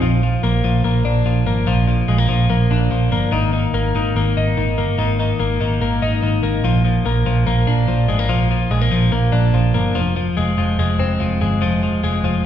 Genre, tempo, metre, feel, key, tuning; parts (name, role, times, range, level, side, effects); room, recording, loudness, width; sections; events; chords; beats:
indie pop; 145 BPM; 4/4; straight; Bb mixolydian; A4 = 442 Hz
twelve-string electric guitar; arpeggios; 0.0-12.5 s; Eb3 to Eb4; -19 LUFS; left 3 dB; spring reverb
vintage muted picked electric bass; bass; 0.0-12.4 s; F1 to Bb1; -18 LUFS; right 1 dB
wet large studio reverb, RT60 1.3 s; band playing live in one room; -15 LUFS; side -10 dB against mid
0.0-12.5 A section
0.0 Bb; 3.3 Absus2; 6.6 Bb; 10.0 Fm
| 0.02 0.43 0.84 1.26 | 1.67 2.09 2.50 2.92 | 3.33 3.75 4.16 4.57 | 4.99 5.40 5.82 6.23 | 6.64 7.06 7.47 7.89 | 8.30 8.71 9.13 9.54 | 9.96 10.37 10.79 11.20 | 11.62 12.03 12.44